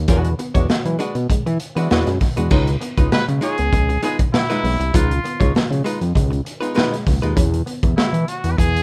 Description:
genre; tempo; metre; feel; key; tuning
funk; 99 BPM; 4/4; straight; unclear; A4 = 440 Hz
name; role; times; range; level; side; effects
fat analog bass; bass; 0.0-8.8 s; Cb2 to E3; -22 LUFS; equal; none
archtop guitar, miked and amplified; accompaniment; 0.1-7.4 s; G#3 to Db5; -27 LUFS; equal; none
crunchy breakbeat drum kit; drums; 0.1-8.8 s; crash cymbal, hi-hat, kick drum, snare drum; -22 LUFS; equal; none
electric guitar through a small old amp; riff; 0.3-8.5 s; F3 to Db4; -32 LUFS; equal; none
clear trumpet; melody; 3.1-8.8 s; Fb4 to Cb5; -25 LUFS; equal; none
room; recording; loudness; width
light reverb; rough home demo mix; -19 LUFS; mono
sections
0.0-2.5 A section; 2.5-8.8 B section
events
none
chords
0.0 E9; 2.5 Db9; 7.4 E5

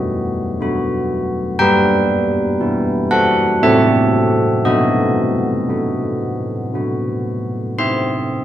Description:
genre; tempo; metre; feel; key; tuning
classical, tune for church bells; 58 BPM; 3/4; straight; unclear; A4 = 440 Hz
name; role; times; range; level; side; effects
carillon bells; solo; 0.0-8.4 s; G3 to C6; -15 LUFS; equal; none
room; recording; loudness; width
wet recital hall reverb, RT60 1.4 s; dark, warm production; -14 LUFS; side -12 dB against mid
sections
0.0-8.4 A section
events
none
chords
0.0 B; 1.6 Em/G; 3.6 F#m7b5/A; 4.6 B; 7.8 C

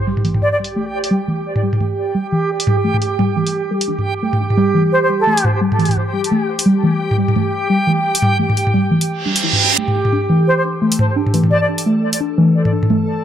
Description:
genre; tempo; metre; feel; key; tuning
half-time drum and bass; 173 BPM; 4/4; swing 57% on 16ths, half-time; unclear; A4 = 441 Hz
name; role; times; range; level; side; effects
impact and reverse cymbal; sound effects; 0.0-0.1, 9.2-9.8 s; none; -17 LUFS; right 4 dB; none
backwards swelling texture; texture; 0.0-13.2 s; G4 to A4; -21 LUFS; right 2 dB; built-in reverb
warbly dusty pluck; arpeggios; 0.1-13.1 s; E3 to A4; -17 LUFS; equal; chorus, tape echo
drum and bass drum kit; drums; 0.2-13.0 s; hi-hat, toms; -18 LUFS; equal; overdrive, low-pass filter on toms, low-pass filter on hats, low-pass filter on snare, low-pass filter on room
silver concert flute; melody; 0.4-0.6, 4.9-5.4, 10.5-11.7 s; A4 to D5; -19 LUFS; equal; tape echo
room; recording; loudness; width
moderate spring reverb, RT60 1.8 s; echo-heavy mix; -14 LUFS; side -10 dB against mid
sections
0.0-13.2 A section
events
filter sweep on synth pluck 0.0-13.2; reverse cymbal 9.2-9.8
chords
0.0 A5

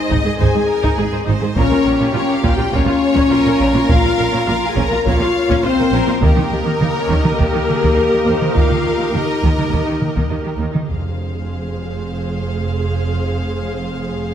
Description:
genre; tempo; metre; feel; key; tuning
cinematic, epic orchestral film score; 103 BPM; 4/4; straight; F minor; A4 = 440 Hz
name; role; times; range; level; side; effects
clear symphonic violin section; melody; 0.0-14.3 s; Bb4 to Bb5; -26 LUFS; left 4 dB; none
bright symphonic violin section; second line; 0.0-14.3 s; F4 to Eb5; -26 LUFS; equal; none
rich symphonic viola section; accompaniment; 0.0-14.3 s; Bb3 to Eb5; -24 LUFS; right 2 dB; none
mellow French horn section; sustained chords; 0.0-14.3 s; Bb3 to Bb4; -20 LUFS; left 4 dB; none
warm symphonic string section; sustained chords; 0.0-10.9 s; Bb3 to Ab5; -25 LUFS; left 1 dB; none
rich symphonic cello section; bass; 0.1-14.3 s; F2 to Eb3; -23 LUFS; right 4 dB; none
rich symphonic double bass section; bass; 0.1-14.3 s; F1 to Eb2; -23 LUFS; right 3 dB; none
taiko ensemble; drums; 0.1-12.0 s; none; -20 LUFS; equal; none
timpani; percussion; 10.9-11.7 s; F2; -29 LUFS; equal; none
room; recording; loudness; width
moderate concert hall reverb, RT60 2.1 s; none; -14 LUFS; side -9 dB against mid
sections
0.0-10.9 A section; 10.9-14.3 B section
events
none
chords
0.0 Ab; 1.6 Bbm; 6.2 Eb; 10.9 Fm

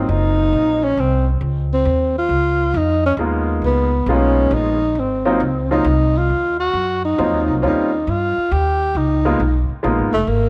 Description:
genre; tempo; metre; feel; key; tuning
jazz, small-group swing and bop; 135 BPM; 3/4; swing 67% on 8ths; Ab mixolydian; A4 = 438 Hz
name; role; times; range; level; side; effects
breathy tenor saxophone; melody; 0.0-10.5 s; A3 to G4; -20 LUFS; equal; none
clear upright piano; accompaniment; 0.0-0.9, 3.2-10.1 s; Gb3 to F4; -23 LUFS; equal; none
upright bass; bass; 0.0-10.5 s; F1 to G2; -22 LUFS; equal; none
room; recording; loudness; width
moderate spring reverb, RT60 2.1 s; none; -18 LUFS; mono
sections
0.0-10.5 A section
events
none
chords
0.0 Ab13 (rootless); 2.3 Db13; 5.0 Ab13; 7.6 Eb13; 8.9 Db13

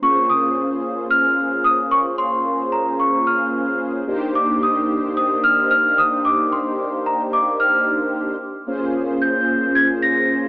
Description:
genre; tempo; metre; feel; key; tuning
funk; 111 BPM; 4/4; straight; Bb dorian; A4 = 440 Hz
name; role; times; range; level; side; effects
large celesta; melody; 0.0-10.5 s; Bb5 to Bb6; -17 LUFS; equal; lush chorus
mellow synth brass; accompaniment; 0.0-10.5 s; Bb3 to C5; -21 LUFS; equal; chorus, phaser
room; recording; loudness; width
wet plate reverb, RT60 2.4 s; dreamy mix soaked in reverb, AM radio sound; -16 LUFS; side -24 dB against mid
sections
0.0-10.5 A section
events
none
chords
0.0 Bbm9; 4.1 Cm9; 8.7 Bbm9

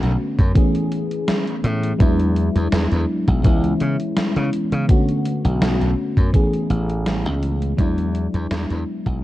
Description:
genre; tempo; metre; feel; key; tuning
vaporwave; 83 BPM; 4/4; swing 53% on 16ths; unclear; A4 = 440 Hz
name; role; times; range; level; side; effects
mellow FM electric piano; accompaniment; 0.0-9.2 s; D3 to G#4; -22 LUFS; left 1 dB; wide subtle chorus, analog delay
slap bass; bass; 0.0-9.2 s; A1 to C#3; -20 LUFS; equal; none
gated 80s digital drum machine; drums; 0.0-9.2 s; hi-hat, snare drum; -25 LUFS; right 1 dB; gated reverb, gated reverb snare, overdrive
electronic kick drum; drums; 0.4-9.2 s; none; -17 LUFS; equal; overdrive
room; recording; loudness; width
light reverb; dark, warm production, cassette tape; -17 LUFS; side -15 dB against mid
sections
0.0-9.2 A section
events
fade-out 5.9-9.2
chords
0.0 Bm7; 0.6 Amaj9; 2.0 E9; 3.4 C#m7; 4.9 Bm7; 6.3 Amaj9; 7.8 E9

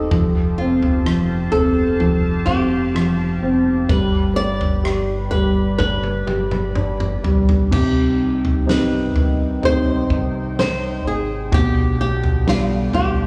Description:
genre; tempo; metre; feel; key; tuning
pop ballad; 63 BPM; 4/4; straight; C harmonic minor; A4 = 435 Hz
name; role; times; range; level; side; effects
flamenco guitar; melody; 0.0-13.3 s; F4 to D5; -26 LUFS; equal; slapback echo
warm baby grand piano; accompaniment; 0.0-13.3 s; B2 to G4; -22 LUFS; equal; slapback echo
sweeping resonant pad; sustained chords; 0.0-13.3 s; B2 to B5; -30 LUFS; equal; chorus
sub bass with octave; bass; 0.0-13.3 s; F1 to C2; -25 LUFS; equal; none
natural country drum kit; drums; 0.1-13.2 s; crash cymbal, kick drum, rim click, snare drum, toms; -25 LUFS; equal; none
room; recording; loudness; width
light reverb, studio ambience; live gig heard through the venue's PA, club reverb, small room ambience; -18 LUFS; mono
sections
0.0-7.7 A section; 7.7-13.3 B section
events
drum fill 5.8-7.7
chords
0.1 Fadd9; 3.9 G; 7.7 Cm; 11.5 G/B

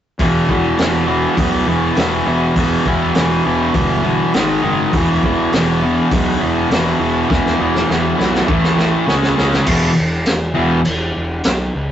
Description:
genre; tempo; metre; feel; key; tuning
garage rock duo or trio; 101 BPM; 4/4; straight; E major; A4 = 440 Hz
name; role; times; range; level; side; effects
fuzz guitar; riff; 0.2-10.8 s; E2 to C#4; -15 LUFS; equal; distortion
fuzz picked electric bass; bass; 0.2-11.9 s; E1 to C#2; -22 LUFS; equal; overdrive
raw garage drum kit; drums; 0.2-11.6 s; crash cymbal, hi-hat, kick drum, snare drum; -20 LUFS; equal; none
room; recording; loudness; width
moderate studio reverb, RT60 0.6 s; rough rehearsal-room recording, warm saturation, nothing above 7.9 kHz; -13 LUFS; side -10 dB against mid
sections
0.2-9.7 A section; 9.7-11.9 B section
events
drum fill 7.3-9.7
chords
0.2 E5; 4.3 G#5; 4.9 E5; 8.5 A5; 9.1 C#5; 9.7 E5

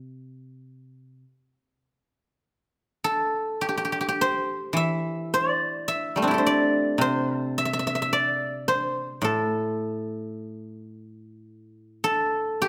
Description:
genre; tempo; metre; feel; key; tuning
chinese traditional, Chinese solo plucked strings; 53 BPM; 4/4; rubato; C gong mode; A4 = 438 Hz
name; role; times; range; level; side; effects
guzheng; solo; 0.0-12.7 s; A2 to E5; -26 LUFS; equal; none
room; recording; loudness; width
moderate recital hall reverb, RT60 1.3 s; none; -26 LUFS; mono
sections
0.0-2.4 A section; 2.4-12.7 B section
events
none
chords
none

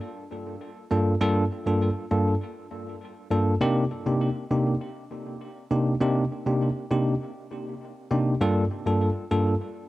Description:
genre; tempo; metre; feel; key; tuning
afrobeats; 100 BPM; 4/4; straight; C dorian; A4 = 437 Hz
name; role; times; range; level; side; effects
bell-like tine electric piano; solo; 0.9-9.5 s; G2 to A4; -24 LUFS; equal; medium stereo tremolo, cassette tape, tape echo
room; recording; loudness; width
light reverb; home recording on cassette; -22 LUFS; side -17 dB against mid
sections
0.0-9.9 A section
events
none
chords
0.0 Gm7; 3.6 Cm7; 8.4 Gm7

